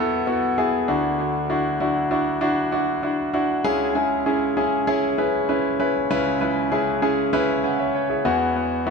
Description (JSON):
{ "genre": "pop", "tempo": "98 BPM", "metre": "4/4", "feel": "straight", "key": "unclear", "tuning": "A4 = 441 Hz", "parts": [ { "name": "clear concert grand piano", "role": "solo", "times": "0.0-8.9 s", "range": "C#2 to B5", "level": "-19 LUFS", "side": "equal", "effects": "tape echo" } ], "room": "moderate plate reverb, RT60 2.5 s", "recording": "echo-heavy mix", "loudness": "-19 LUFS", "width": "side -4 dB against mid", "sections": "0.0-8.9 A section", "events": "none", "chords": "0.0 Esus2; 0.9 Dadd9; 3.6 C#m; 8.3 Esus2", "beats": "0.57 | 1.19 1.80 2.41 3.03 | 3.64 4.26 4.87 5.49 | 6.10 6.72 7.33 7.94 | 8.56" }